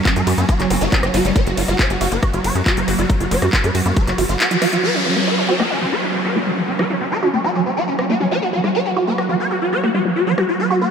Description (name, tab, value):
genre	psychedelic trance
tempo	138 BPM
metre	4/4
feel	straight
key	F# major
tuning	A4 = 440 Hz
part	evolving wavetable pad	sustained chords	0.0-10.9 s	F#3	-24 LUFS	right 3 dB	ensemble chorus, built-in reverb, phaser, sidechain pumping
part	swarming rave lead	melody	0.1-10.9 s	C#4 to C#5	-20 LUFS	equal	chorus, phaser, sidechain pumping, analog delay
part	drum and bass drum kit	drums	0.1-10.5 s	handclaps, hi-hat, ride cymbal, rim click	-23 LUFS	equal	studio reverb
part	electronic kick drum	drums	0.1-4.1 s	none	-17 LUFS	equal	studio reverb
part	tight sequencer bass	bass	0.2-4.4 s	F#1 to F#2	-21 LUFS	equal	none
part	woody wave-folded pluck	riff	0.3-10.9 s	F#3 to F#4	-22 LUFS	moving between left 2 dB and right 4 dB	chorus, auto-pan, sidechain pumping, analog delay
part	zap and downlifter	sound effects	0.7-0.8, 4.8-8.3 s	none	-28 LUFS	left 1 dB	none
room	wet huge ambient reverb, RT60 8.1 s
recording	dreamy mix soaked in reverb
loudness	-15 LUFS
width	side -7 dB against mid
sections	0.0-4.8 A section; 4.8-10.9 B section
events	drop 0.0-4.8; kick drops out 4.4-4.8; band accent 4.4; filter sweep on synth arpeggio sound 4.8-10.9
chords	0.0 F#5